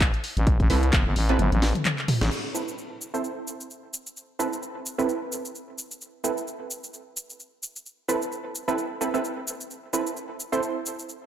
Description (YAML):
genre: bass house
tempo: 130 BPM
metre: 4/4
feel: swing 57% on 16ths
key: A minor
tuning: A4 = 440 Hz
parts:
  - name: orchestra-hit-like synth stab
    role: stabs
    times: 0.0-11.3 s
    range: C4 to C5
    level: -29 LUFS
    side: right 3 dB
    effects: built-in reverb, sidechain pumping, digital delay
  - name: growling FM bass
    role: bass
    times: 0.0-2.3 s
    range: G1 to C2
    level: -22 LUFS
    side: equal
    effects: tube saturation, sidechain pumping
  - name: electronic kick drum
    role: drums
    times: 0.0-1.0 s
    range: none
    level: -22 LUFS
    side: equal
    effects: none
  - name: house drum kit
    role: drums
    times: 0.0-11.2 s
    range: crash cymbal, handclaps, hi-hat, shaker, snare drum, toms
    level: -28 LUFS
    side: left 1 dB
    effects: none
room: light reverb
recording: none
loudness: -24 LUFS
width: side -11 dB against mid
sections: 0.0-2.3 A section; 2.3-11.3 B section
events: break 1.4-2.3; drum fill 1.4-2.3; band accent 2.2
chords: 0.0 Amadd9